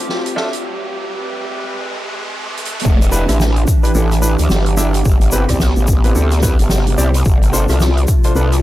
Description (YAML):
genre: glitch hop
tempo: 109 BPM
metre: 4/4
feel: swing 60% on 16ths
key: A minor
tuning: A4 = 440 Hz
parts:
  - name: warbly tape-like pad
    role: sustained chords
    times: 0.0-8.6 s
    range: C3 to B4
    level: -22 LUFS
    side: right 2 dB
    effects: chorus, built-in reverb, sidechain pumping
  - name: riser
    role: sound effects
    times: 0.0-2.8 s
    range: none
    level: -26 LUFS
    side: right 1 dB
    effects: none
  - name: granular cloud pad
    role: texture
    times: 0.0-0.6 s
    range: C4 to A5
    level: -34 LUFS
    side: left 2 dB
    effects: built-in reverb, sidechain pumping
  - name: soft-mallet drum kit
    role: drums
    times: 0.1-8.6 s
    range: crash cymbal, hi-hat, rim click, snare drum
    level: -23 LUFS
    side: right 1 dB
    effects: none
  - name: warm grand piano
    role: stabs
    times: 0.4-8.4 s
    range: C4 to E5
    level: -22 LUFS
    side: right 1 dB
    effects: sidechain pumping, tape echo
  - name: egg shaker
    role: percussion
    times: 2.8-8.6 s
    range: none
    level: -26 LUFS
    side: left 3 dB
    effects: none
  - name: growl bass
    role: bass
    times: 2.9-8.6 s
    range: E1 to D2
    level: -14 LUFS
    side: equal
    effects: chorus
  - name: electronic kick drum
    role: drums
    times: 2.9-8.2 s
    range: none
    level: -14 LUFS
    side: equal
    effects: none
room: small room reverb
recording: transformer saturation, high-pass filter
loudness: -13 LUFS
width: side -15 dB against mid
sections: 0.0-2.8 A section; 2.8-8.6 B section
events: build-up 0.0-2.8; drum fill 0.0-0.6, 2.6; riser 0.0-2.8; filter sweep 0.0-2.8; break 0.6-2.8; drop 2.8-8.6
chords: 0.0 G9sus4; 0.6 Am9; 2.8 Em7; 5.1 Am9; 7.3 G9sus4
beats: 0.10 | 0.65 1.20 1.75 2.30 | 2.85 3.40 3.95 4.50 | 5.05 5.60 6.15 6.70 | 7.25 7.80 8.35